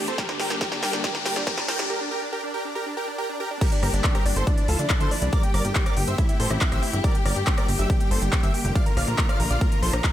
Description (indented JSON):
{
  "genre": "uplifting trance",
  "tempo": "140 BPM",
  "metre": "4/4",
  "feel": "straight",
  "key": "G dorian",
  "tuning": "A4 = 439 Hz",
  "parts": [
    { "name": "big supersaw lead", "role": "melody", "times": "0.0-10.1 s", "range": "D4 to F5", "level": "-29 LUFS", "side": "right 1 dB", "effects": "sidechain pumping, digital delay" },
    { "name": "warm studio string section", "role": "sustained chords", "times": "0.0-10.1 s", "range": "D3 to G4", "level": "-31 LUFS", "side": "left 3 dB", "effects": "sidechain pumping" },
    { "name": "wide unison pluck", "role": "arpeggios", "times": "0.0-1.9 s", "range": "G4 to Bb5", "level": "-34 LUFS", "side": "right 4 dB", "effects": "cassette tape, sidechain pumping, digital delay" },
    { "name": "riser", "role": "sound effects", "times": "0.0-1.9 s", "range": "none", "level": "-31 LUFS", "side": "left 4 dB", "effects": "none" },
    { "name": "big-room dance drum kit", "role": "drums", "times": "0.1-10.1 s", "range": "crash cymbal, handclaps, hi-hat, rim click, snare drum", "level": "-29 LUFS", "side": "equal", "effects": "high-pass filter on hats, high-pass filter on snare, high-pass filter on cymbals, high-pass filter on room" },
    { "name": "electronic kick drum", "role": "drums", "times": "0.2-10.1 s", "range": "none", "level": "-23 LUFS", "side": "equal", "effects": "none" },
    { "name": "plucky unison lead", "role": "second line", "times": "3.6-10.1 s", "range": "D5 to F6", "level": "-33 LUFS", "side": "equal", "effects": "sidechain pumping, digital delay" },
    { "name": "plucky analog bass", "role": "bass", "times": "3.8-10.0 s", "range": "F1 to D2", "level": "-25 LUFS", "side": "equal", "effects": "sidechain pumping" }
  ],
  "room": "light reverb, digital ambience",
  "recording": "high-pass filter",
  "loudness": "-21 LUFS",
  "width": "side -12 dB against mid",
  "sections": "0.0-3.6 A section; 3.6-10.1 B section",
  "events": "build-up 0.0-3.6; drum fill 0.0-1.9; riser 0.0-1.9; filter sweep 0.0-3.6; break 1.9-3.6; drop 3.6-10.1",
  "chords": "0.2 Gm; 1.9 Gm/D; 3.6 Gm; 4.5 Dmadd9; 5.3 Gm; 6.2 Am7; 7.0 Gm; 8.8 Bb"
}